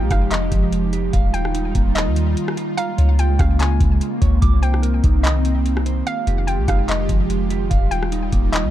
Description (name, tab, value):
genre	hip hop, atmospheric cloud-rap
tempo	146 BPM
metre	4/4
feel	half-time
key	Eb major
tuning	A4 = 440 Hz
part	hollow square pluck	melody	0.0-8.7 s	Eb5 to Ab5	-28 LUFS	left 1 dB	chorus, ping-pong delay
part	airy breathy pad	sustained chords	0.0-8.7 s	Db3 to G4	-24 LUFS	right 1 dB	chorus, sidechain pumping
part	semi-hollow electric guitar	arpeggios	0.0-8.7 s	Db3 to D6	-28 LUFS	right 6 dB	ping-pong delay
part	soft 808-style bass	bass	0.0-8.7 s	Eb1 to Eb2	-19 LUFS	equal	none
part	booming analog drum machine	drums	0.1-8.6 s	handclaps, hi-hat, kick drum, rim click	-20 LUFS	equal	none
room	little or no reverb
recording	dark, warm production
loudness	-16 LUFS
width	side -12 dB against mid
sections	0.0-8.7 A section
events	none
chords	0.0 Fm9; 1.1 Ebadd9; 2.8 Db6; 4.4 Cm9; 6.1 Fm9; 7.7 Ebadd9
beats	0.31 0.72 | 1.13 1.54 1.96 2.37 | 2.78 3.19 3.60 4.01 | 4.42 4.83 5.24 5.66 | 6.07 6.48 6.89 7.30 | 7.71 8.12 8.53